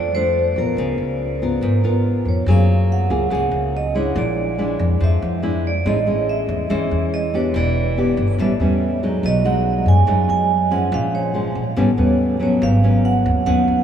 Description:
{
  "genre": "bossa nova",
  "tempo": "142 BPM",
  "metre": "4/4",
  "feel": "straight",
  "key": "unclear",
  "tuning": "A4 = 437 Hz",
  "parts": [
    { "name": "vibraphone with medium hard mallets", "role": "melody", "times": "0.0-13.8 s", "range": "Bb4 to G#5", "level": "-22 LUFS", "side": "right 4 dB", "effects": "none" },
    { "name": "nylon-string guitar", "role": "accompaniment", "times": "0.0-13.8 s", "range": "F2 to Bb4", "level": "-20 LUFS", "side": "left 1 dB", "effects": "none" },
    { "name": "upright bass", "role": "bass", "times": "0.0-13.8 s", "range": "E1 to F#2", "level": "-20 LUFS", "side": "equal", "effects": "none" }
  ],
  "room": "wet huge ambient reverb, RT60 8.1 s",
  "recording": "in a vast, echoing space",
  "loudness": "-16 LUFS",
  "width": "side -9 dB against mid",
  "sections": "0.0-2.5 A section; 2.5-13.8 B section",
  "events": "none",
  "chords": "0.0 Bbmaj7; 0.8 Db6; 2.5 F#maj9; 4.2 A#7#11; 5.9 Amaj9#11; 7.5 Em7; 8.4 A9; 9.2 B6; 10.9 A#m7; 11.8 A9; 12.6 G#m7"
}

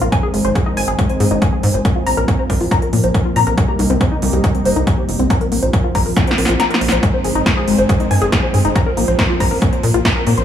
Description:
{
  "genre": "uplifting trance",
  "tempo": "139 BPM",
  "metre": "4/4",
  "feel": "straight",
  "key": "unclear",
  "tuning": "A4 = 440 Hz",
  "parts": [
    { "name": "lush unison pad", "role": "sustained chords", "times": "0.0-10.4 s", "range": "C3 to Eb4", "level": "-21 LUFS", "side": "right 1 dB", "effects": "chorus, sidechain pumping" },
    { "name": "tight sequenced synth", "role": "arpeggios", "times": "0.0-10.4 s", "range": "G3 to Bb5", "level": "-20 LUFS", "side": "left 3 dB", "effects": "chorus, sidechain pumping, tape echo" },
    { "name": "tight sequencer bass", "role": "bass", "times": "0.0-10.4 s", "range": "G1 to Bb2", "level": "-18 LUFS", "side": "equal", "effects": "sidechain pumping" },
    { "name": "big-room dance drum kit", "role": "drums", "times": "0.0-10.4 s", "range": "hi-hat, snare drum", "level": "-22 LUFS", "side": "right 1 dB", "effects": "overdrive" },
    { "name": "electronic kick drum", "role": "drums", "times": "0.1-10.1 s", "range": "none", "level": "-16 LUFS", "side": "equal", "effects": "overdrive" }
  ],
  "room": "light reverb, digital ambience",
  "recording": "small room ambience",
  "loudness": "-13 LUFS",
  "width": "side -10 dB against mid",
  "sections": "0.0-10.4 A section",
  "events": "filter sweep on synth arpeggio sound 0.0-10.4; filter sweep on analog synth pad 0.0-10.4; drum fill 6.2-7.0; kick drops out 6.6-7.0",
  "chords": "0.1 Ab; 1.8 Bbsus2; 3.6 Cm7; 5.3 Bbsus2; 7.0 Ab; 8.8 Bbsus2"
}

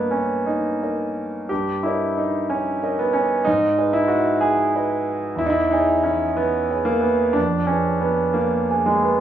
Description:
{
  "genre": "classical, romantic character piece for solo piano",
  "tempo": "61 BPM (dotted quarters)",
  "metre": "6/8",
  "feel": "uneven beats, rubato",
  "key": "G# minor",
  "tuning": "A4 = 437 Hz",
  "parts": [
    { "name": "warm concert grand piano", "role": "solo", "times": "0.0-9.2 s", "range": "E2 to G#5", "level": "-18 LUFS", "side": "right 1 dB", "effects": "none" }
  ],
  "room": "light reverb",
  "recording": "worn, warbling old tape, cassette tape, warbly pitch drift, studio reverb",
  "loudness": "-18 LUFS",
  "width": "side -10 dB against mid",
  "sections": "0.0-9.2 A section",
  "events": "none",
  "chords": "0.0 D#/G; 1.5 D#7/G; 3.5 G#m; 5.4 C#m/E; 7.4 Fdim"
}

